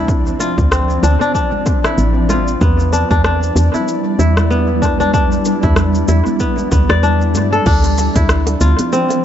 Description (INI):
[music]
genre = organic downtempo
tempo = 95 BPM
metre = 4/4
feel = swing 57% on 16ths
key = D dorian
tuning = A4 = 438 Hz
[part]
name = granular cloud pad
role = sustained chords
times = 0.0-9.2 s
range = F3 to D5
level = -20 LUFS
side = equal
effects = built-in reverb, sidechain pumping
[part]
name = kora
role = arpeggios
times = 0.0-9.2 s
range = B3 to D5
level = -18 LUFS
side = left 2 dB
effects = analog delay
[part]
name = woody FM bass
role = bass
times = 0.0-8.7 s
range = A1 to G2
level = -14 LUFS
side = equal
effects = sidechain pumping
[part]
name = electronic kick drum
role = drums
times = 0.1-8.3 s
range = none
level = -17 LUFS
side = equal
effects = overdrive
[part]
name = organic electronic drum kit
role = drums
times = 0.1-9.2 s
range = crash cymbal, hi-hat, rim click, shaker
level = -23 LUFS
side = equal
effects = analog delay
[part]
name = bongos and congas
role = percussion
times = 0.4-9.2 s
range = none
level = -26 LUFS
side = right 2 dB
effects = none
[sound]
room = digital ambience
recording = echo-heavy mix, nothing above 7.8 kHz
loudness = -12 LUFS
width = side -10 dB against mid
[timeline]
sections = 0.0-7.7 A section; 7.7-9.2 B section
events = none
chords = 0.0 Dm7; 2.6 Em7; 7.7 Dm7